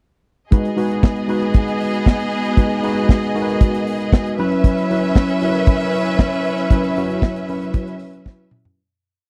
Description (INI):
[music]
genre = disco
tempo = 116 BPM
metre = 4/4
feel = straight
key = G# minor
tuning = A4 = 439 Hz
[part]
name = clear studio string section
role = second line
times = 0.5-8.5 s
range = B3 to E5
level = -25 LUFS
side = equal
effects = none
[part]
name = tine electric piano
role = accompaniment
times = 0.5-8.8 s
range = F#3 to B4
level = -22 LUFS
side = equal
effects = overdrive, tube saturation, analog chorus
[part]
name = modern studio drum kit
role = drums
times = 0.5-8.8 s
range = hi-hat, kick drum, snare drum, toms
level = -15 LUFS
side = equal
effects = none
[sound]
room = little or no reverb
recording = dry, close 1970s-style studio recording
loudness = -18 LUFS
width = mono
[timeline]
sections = 0.5-8.8 breakdown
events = fade-out 6.7-8.8; drum fill 8.3-8.8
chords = 0.5 G#m7; 4.4 F#7sus4